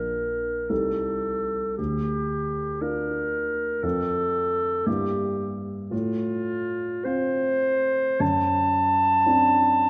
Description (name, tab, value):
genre	classical, romantic duo for clarinet and grand piano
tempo	50-60 BPM (dotted quarters)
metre	6/8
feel	rubato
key	Bb major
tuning	A4 = 445 Hz
part	mellow clarinet	melody	0.0-9.9 s	F4 to A5	-26 LUFS	equal	none
part	warm baby grand piano	accompaniment	0.0-9.9 s	Bb1 to A4	-30 LUFS	equal	none
room	wet recital hall reverb, RT60 1.6 s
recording	none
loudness	-25 LUFS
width	mono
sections	0.0-9.9 A section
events	none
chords	0.0 Bb; 0.7 Adim/C; 1.8 Bb/D; 3.8 F; 4.9 Edim/G; 5.9 F/A; 8.2 D7/F#